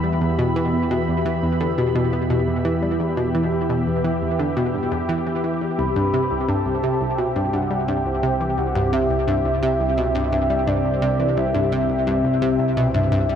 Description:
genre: ambient, sequencer-driven space music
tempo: 86 BPM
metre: 4/4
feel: straight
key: unclear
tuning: A4 = 441 Hz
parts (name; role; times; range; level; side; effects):
- lush unison pad; sustained chords; 0.0-13.4 s; C3 to B5; -23 LUFS; left 1 dB; chorus, phaser
- analog pluck; riff; 0.0-13.4 s; C2 to B3; -23 LUFS; equal; chorus, tape echo
- fat analog bass; bass; 0.0-13.4 s; C2 to E2; -27 LUFS; equal; none
- soft octave-layered synth lead; melody; 5.8-13.4 s; D5 to B5; -24 LUFS; equal; chorus, tremolo, tape echo
room: moderate plate reverb, RT60 3.7 s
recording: none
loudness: -18 LUFS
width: side -8 dB against mid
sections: 0.0-13.4 A section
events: none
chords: 0.0 Em; 5.8 C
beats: | 0.21 0.91 1.60 2.30 | 3.00 3.70 4.39 5.09 | 5.79 6.49 7.19 7.88 | 8.58 9.28 9.98 10.67 | 11.37 12.07 12.77

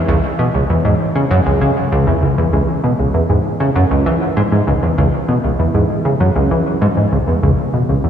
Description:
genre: ambient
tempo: 98 BPM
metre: 4/4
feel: straight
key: C# minor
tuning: A4 = 439 Hz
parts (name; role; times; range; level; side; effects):
- plucky analog bass; solo; 0.0-8.1 s; C#2 to E3; -13 LUFS; equal; analog chorus, tape echo
room: wet lush hall reverb, RT60 2.9 s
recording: dreamy mix soaked in reverb, cassette tape, small room reverb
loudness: -13 LUFS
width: side -9 dB against mid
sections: 0.0-2.5 A section; 2.5-8.1 B section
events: none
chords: none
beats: | 0.08 0.69 1.31 1.92 | 2.53 3.14 3.75 4.37 | 4.98 5.59 6.20 6.82 | 7.43 8.04

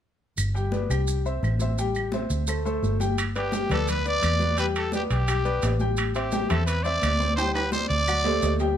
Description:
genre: latin, salsa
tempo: 172 BPM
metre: 4/4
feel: straight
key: G major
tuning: A4 = 440 Hz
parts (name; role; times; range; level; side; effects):
- vintage muted fingered electric bass; bass; 0.4-8.8 s; G1 to E2; -26 LUFS; equal; none
- claves; percussion; 0.4-8.3 s; none; -36 LUFS; right 5 dB; none
- congas; percussion; 0.4-8.6 s; none; -33 LUFS; left 2 dB; none
- maracas; percussion; 0.4-8.8 s; none; -38 LUFS; right 5 dB; none
- clear grand piano; accompaniment; 0.5-8.8 s; F#3 to G5; -29 LUFS; left 3 dB; none
- timbales; percussion; 3.2-8.7 s; none; -32 LUFS; right 4 dB; none
- growling trumpet; melody; 3.4-8.6 s; G4 to D5; -27 LUFS; right 1 dB; none
room: light reverb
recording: none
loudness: -22 LUFS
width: side -9 dB against mid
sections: 0.4-3.2 A section; 3.2-8.8 B section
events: drum fill 7.4-8.8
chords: 0.4 G; 1.1 C6; 1.8 Am7; 2.5 D5; 3.2 G; 4.6 Em7; 6.0 Am7; 7.4 D7sus4; 8.1 D7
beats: | 0.38 0.73 1.08 1.43 | 1.78 2.13 2.48 2.83 | 3.18 3.53 3.88 4.23 | 4.58 4.93 5.28 5.63 | 5.98 6.33 6.68 7.03 | 7.38 7.73 8.08 8.43

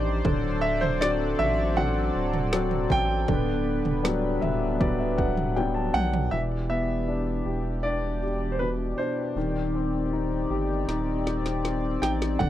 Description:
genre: pop ballad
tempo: 79 BPM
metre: 4/4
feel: straight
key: unclear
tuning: A4 = 440 Hz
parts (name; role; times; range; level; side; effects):
- warm concert grand piano; accompaniment; 0.0-12.5 s; B2 to A5; -28 LUFS; left 4 dB; none
- chorused pulse-width pad; sustained chords; 0.0-12.5 s; B2 to D5; -32 LUFS; right 1 dB; none
- saturated sub bass; bass; 0.0-12.5 s; D1 to B1; -30 LUFS; equal; none
- deep house drum kit; drums; 0.2-6.3, 10.9-12.5 s; kick drum, snare drum, toms; -29 LUFS; right 2 dB; none
- bright concert grand piano; melody; 0.6-12.5 s; B4 to G5; -29 LUFS; right 1 dB; none
room: little or no reverb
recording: dry, close 1970s-style studio recording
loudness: -24 LUFS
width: side -12 dB against mid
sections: 0.0-6.3 A section; 6.3-12.5 B section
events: grand piano fill 4.0-6.3; drum fill 5.6-6.3, 10.9-12.4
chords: 0.2 D7; 3.3 Gmaj7/D; 6.3 Em7; 9.4 Cmadd9/Eb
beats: | 0.25 1.01 1.77 2.53 | 3.29 4.04 4.80 5.56 | 6.32 7.08 7.84 8.60 | 9.36 10.12 10.88 11.64 | 12.40

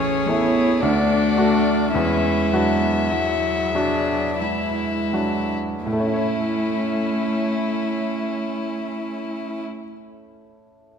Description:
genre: classical, slow romantic movement for piano quintet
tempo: 40-56 BPM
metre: 3/4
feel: rubato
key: A major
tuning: A4 = 439 Hz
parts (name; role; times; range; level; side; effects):
- warm violin; melody; 0.0-9.6 s; E4 to E5; -26 LUFS; left 7 dB; none
- dark cello; second line; 0.0-9.6 s; E3 to B3; -24 LUFS; right 1 dB; none
- rich violin; second line; 0.0-9.6 s; E4 to G#4; -29 LUFS; left 1 dB; none
- bright concert grand piano; accompaniment; 0.0-11.0 s; A1 to C#5; -25 LUFS; equal; none
- warm viola; accompaniment; 0.0-9.6 s; B3 to E4; -28 LUFS; right 2 dB; none
room: moderate scoring stage reverb, RT60 1.9 s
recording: none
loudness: -19 LUFS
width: side -7 dB against mid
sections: 0.0-5.9 A section; 5.9-10.0 B section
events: slowing down 0.0-5.9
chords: 0.0 A; 0.8 D; 1.9 E9; 5.9 A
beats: 0.81 | 1.94 3.12 4.41 | 5.85 7.26 8.62

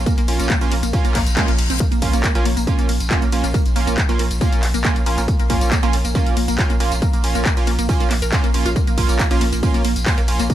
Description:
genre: driving peak-time techno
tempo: 138 BPM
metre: 4/4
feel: straight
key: Bb minor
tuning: A4 = 440 Hz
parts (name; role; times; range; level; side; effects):
- saturated sub bass; bass; 0.0-10.5 s; Bb1; -22 LUFS; equal; tube saturation, sidechain pumping, low-pass filter
- resonant blip pluck; riff; 0.1-10.5 s; Ab3 to Bb4; -25 LUFS; equal; phaser, tube saturation, sidechain pumping, digital delay
- electronic kick drum; drums; 0.1-10.5 s; none; -18 LUFS; equal; none
- punchy analog drum machine; drums; 0.1-10.5 s; handclaps, hi-hat, ride cymbal, tambourine; -25 LUFS; left 1 dB; overdrive
- sync-sweep polysynth; stabs; 0.3-10.4 s; Bb3 to F4; -24 LUFS; right 5 dB; chorus, sidechain pumping, digital delay
- reverse cymbal; sound effects; 1.1-1.8 s; none; -28 LUFS; left 4 dB; none
room: little or no reverb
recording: lossy compression artefacts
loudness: -16 LUFS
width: side -12 dB against mid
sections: 0.0-10.5 A section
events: reverse cymbal 1.1-1.8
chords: 0.0 Bbm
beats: | 0.06 0.50 0.93 1.37 | 1.80 2.24 2.67 3.11 | 3.54 3.98 4.41 4.85 | 5.28 5.71 6.15 6.58 | 7.02 7.46 7.89 8.32 | 8.76 9.19 9.63 10.06 | 10.50

